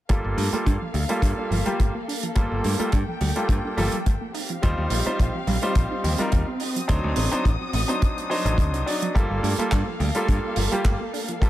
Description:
nu-disco, nu disco; 106 BPM; 4/4; swing 54% on 16ths; G minor; A4 = 440 Hz
bright grand piano; accompaniment; 0.1-11.5 s; F#3 to D5; -27 LUFS; equal; sidechain pumping, low-pass filter, dub echo
dark chamber string section; sustained chords; 0.1-11.5 s; Bb3 to Eb6; -32 LUFS; left 1 dB; sidechain pumping
wide unison pluck; arpeggios; 0.1-11.5 s; F3 to Eb4; -32 LUFS; right 3 dB; sidechain pumping, dub echo
modern bright picked electric bass; bass; 0.1-11.5 s; G1 to G2; -25 LUFS; equal
damped 70s drum kit; drums; 0.1-11.5 s; handclaps, hi-hat; -32 LUFS; right 5 dB
kick drum; drums; 0.1-11.5 s; -22 LUFS; equal
light reverb, small room reverb; -21 LUFS; side -14 dB against mid
0.1-11.5 A section
filter sweep on synth arpeggio sound 0.1-11.5
0.1 Gm9; 4.3 Eb69; 6.6 D7b9; 9.2 Gm9
| 0.10 0.66 1.23 1.79 | 2.36 2.93 3.49 4.06 | 4.62 5.19 5.76 6.32 | 6.89 7.46 8.02 8.59 | 9.15 9.72 10.29 10.85 | 11.42

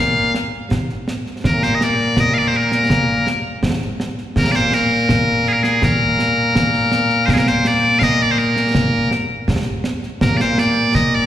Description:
scottish traditional, Scottish pipe music; 82 BPM; 2/4; straight; Bb major; A4 = 439 Hz
loud bright bagpipes; melody; 0.0-11.3 s; Bb2 to F5; -16 LUFS; left 1 dB; slapback echo
concert snare drum and concert bass drum; drums; 0.3-11.1 s; -19 LUFS; right 1 dB
moderate lush hall reverb, RT60 2.3 s; live gig heard through the venue's PA, recital hall reverb; -14 LUFS; side -11 dB against mid
0.0-7.3 A section; 7.3-11.3 A section
0.70 | 1.43 2.17 | 2.90 3.63 | 4.36 5.09 | 5.82 6.55 | 7.29 8.02 | 8.75 9.48 | 10.21 10.95

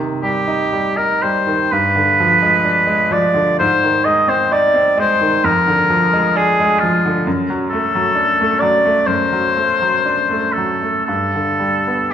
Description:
classical, romantic duo for oboe and grand piano; 58-67 BPM; 4/4; rubato; A4 = 440 Hz
bright grand piano; accompaniment; 0.0-12.1 s; F2 to Eb4; -18 LUFS; right 1 dB
clear oboe; melody; 0.2-12.1 s; F4 to Eb5; -14 LUFS; left 1 dB
wet recital hall reverb, RT60 1.6 s; minimal, uncompressed stereo recording; -13 LUFS; side -9 dB against mid
0.0-12.1 A section
0.0 Cm; 1.7 G7b9; 3.6 Ab; 5.4 Ddim/F; 7.3 D7/F#; 11.1 G
0.74 1.72 2.66 | 3.59 4.52 5.44 6.36 | 7.27 8.16 9.07 10.04 | 11.07 12.10

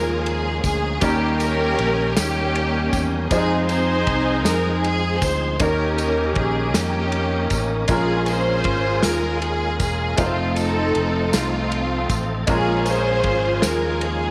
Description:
slow gospel; 52 BPM (dotted quarters); 6/8; straight; A4 = 438 Hz
rich studio string section; melody; 0.0-14.3 s; A3 to C5; -24 LUFS; equal; slapback echo
bright upright piano; accompaniment; 0.0-14.3 s; Bb2 to C5; -29 LUFS; equal
tonewheel organ; sustained chords; 0.0-14.3 s; Eb3 to Bb4; -32 LUFS; equal; slow rotary speaker, overdrive, chorus vibrato
fingered electric bass; bass; 0.0-14.3 s; Fb1 to F2; -27 LUFS; equal
warm soul drum kit; drums; 0.3-14.2 s; kick drum, ride cymbal, snare drum; -30 LUFS; equal
tambourine; percussion; 0.6-14.0 s; -35 LUFS; equal
light reverb, studio reverb; -21 LUFS; mono
0.0-14.3 A section
0.0 Bbm7; 1.0 Eb7; 3.3 Fm7; 5.6 Eb7; 7.9 Bbm7; 10.2 F7; 12.5 Bbm7
| 1.02 2.17 | 3.31 4.46 | 5.60 6.75 | 7.89 9.04 | 10.19 11.33 | 12.48 13.63

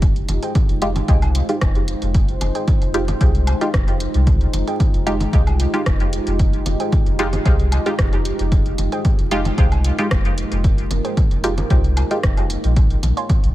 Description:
dub techno; 113 BPM; 4/4; straight; F minor; A4 = 440 Hz
deep dark ambient pad; sustained chords; 0.0-13.5 s; Ab3 to C5; -26 LUFS; equal; chorus, built-in reverb, sidechain pumping
soft dub sub bass; bass; 0.0-13.5 s; F1 to C2; -20 LUFS; equal; tube saturation, sidechain pumping
electronic kick drum; drums; 0.0-13.4 s; -17 LUFS; equal
punchy analog drum machine; drums; 0.0-13.5 s; hi-hat, rim click; -29 LUFS; equal
congas and woodblock; percussion; 0.3-13.4 s; -29 LUFS; equal; sidechain pumping on perc, dub echo
warbly dusty pluck; riff; 0.4-13.3 s; Ab4 to C6; -31 LUFS; right 2 dB; chorus, sidechain pumping, dub echo
filtered dub chord stab; stabs; 0.8-12.2 s; Ab3 to G4; -24 LUFS; equal; chorus, phaser, sidechain pumping, dub echo
little or no reverb; vinyl crackle; -15 LUFS; side -15 dB against mid
0.0-13.5 A section
0.0 Fm9; 12.8 Bbm9
| 0.02 0.55 1.08 1.61 | 2.15 2.68 3.21 3.74 | 4.27 4.80 5.33 5.86 | 6.39 6.92 7.46 7.99 | 8.52 9.05 9.58 10.11 | 10.64 11.17 11.70 12.23 | 12.77 13.30

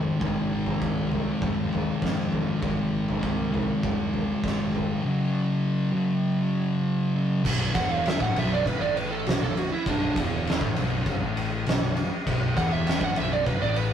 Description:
stoner and doom metal; 100 BPM; 4/4; straight; B minor from 7.5 s; A4 = 440 Hz
thick fuzz guitar; riff; 0.0-13.9 s; B1 to G#3; -27 LUFS; left 2 dB; distortion
thick fuzz guitar; riff; 0.0-13.9 s; B1 to G#3; -32 LUFS; right 3 dB; distortion
fuzz picked electric bass; bass; 0.0-13.9 s; B0 to E#2; -33 LUFS; right 1 dB; overdrive
oversized low-tuned drum kit; drums; 0.2-13.9 s; crash cymbal, kick drum, ride cymbal, snare drum, toms; -28 LUFS; equal
fuzz lead guitar; melody; 7.8-13.9 s; D4 to F#5; -27 LUFS; right 4 dB; distortion
light reverb; rough rehearsal-room recording, warm saturation; -23 LUFS; side -9 dB against mid
0.0-7.5 A section; 7.5-13.9 B section
lead electric guitar solo 7.5-13.9
0.0 G#; 5.0 F#5; 7.5 B5
| 0.21 0.81 1.41 2.02 | 2.62 3.23 3.83 4.43 | 5.04 5.64 6.24 6.85 | 7.45 8.05 8.65 9.26 | 9.86 10.46 11.06 11.66 | 12.27 12.87 13.47

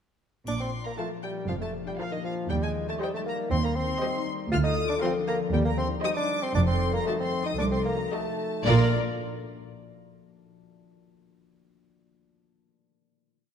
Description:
cinematic, playful, whimsical film cue; 117 BPM; 4/4; uneven beats; Bb major; A4 = 440 Hz
rich studio violin section; second line; 0.5-9.0 s; Eb5 to F6; -35 LUFS; left 1 dB
mellow bassoon; accompaniment; 0.5-8.9 s; Eb3 to F4; -31 LUFS; equal
concert harp; arpeggios; 0.5-10.5 s; Bb2 to D5; -33 LUFS; left 6 dB
dark studio cello section; bass; 0.5-8.9 s; C2 to Bb2; -30 LUFS; right 2 dB
warm studio double bass section; bass; 0.5-9.0 s; F1 to Eb2; -29 LUFS; right 3 dB
triangle; percussion; 0.5-1.5 s; -49 LUFS; left 2 dB
warm studio violin section; melody; 1.0-8.9 s; D5 to F5; -35 LUFS; left 6 dB
warm studio viola section; accompaniment; 1.0-9.0 s; F4 to C5; -35 LUFS; right 1 dB
moderate scoring stage reverb, RT60 1.9 s; dark, warm production; -25 LUFS; side -8 dB against mid
0.5-8.7 A section; 8.7-10.8 final chord
0.5 Bb; 2.5 Cm/Eb; 4.5 Bb/D; 5.5 Cm/Eb; 6.5 F7b9; 8.7 Bb
| 0.47 0.98 1.50 2.00 | 2.51 3.01 3.51 4.01 | 4.52 5.02 5.53 6.03 | 6.55 7.07 7.59 8.12 | 8.65 9.19 9.72 10.25

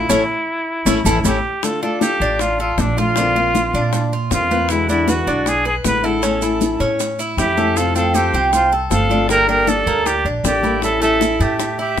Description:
latin, Cuban son and guajira; 157 BPM; 4/4; straight; D minor; A4 = 439 Hz
breathy trumpet; melody; 0.0-12.0 s; D4 to B4; -19 LUFS; right 1 dB
flamenco guitar; accompaniment; 0.0-12.0 s; B2 to A4; -22 LUFS; left 4 dB
Cuban tres; arpeggios; 0.0-12.0 s; A3 to B4; -21 LUFS; right 1 dB
upright bass; bass; 0.0-12.0 s; G1 to Bb2; -23 LUFS; right 1 dB
bongos; percussion; 0.1-12.0 s; -26 LUFS; left 5 dB
congas; percussion; 0.1-12.0 s; -26 LUFS; right 1 dB
maracas; percussion; 0.1-11.8 s; -28 LUFS; right 8 dB
breathy bright jazz flute; second line; 7.4-12.0 s; C5 to G5; -24 LUFS; right 5 dB
moderate studio reverb, RT60 0.8 s; minimal, uncompressed stereo recording; -15 LUFS; side -9 dB against mid
0.0-1.6 A section; 1.6-12.0 A section
drum fill 0.1-1.6; band accent 0.1-1.6
0.1 A; 1.6 Dm; 3.2 Bbadd9; 4.7 E7; 6.2 A; 7.8 F; 9.3 Gmadd9; 10.8 A7
| 0.10 0.48 0.87 1.25 | 1.63 2.02 2.40 2.78 | 3.17 3.55 3.93 4.32 | 4.70 5.08 5.46 5.85 | 6.23 6.61 7.00 7.38 | 7.76 8.15 8.53 8.91 | 9.30 9.68 10.06 10.45 | 10.83 11.21 11.60 11.98

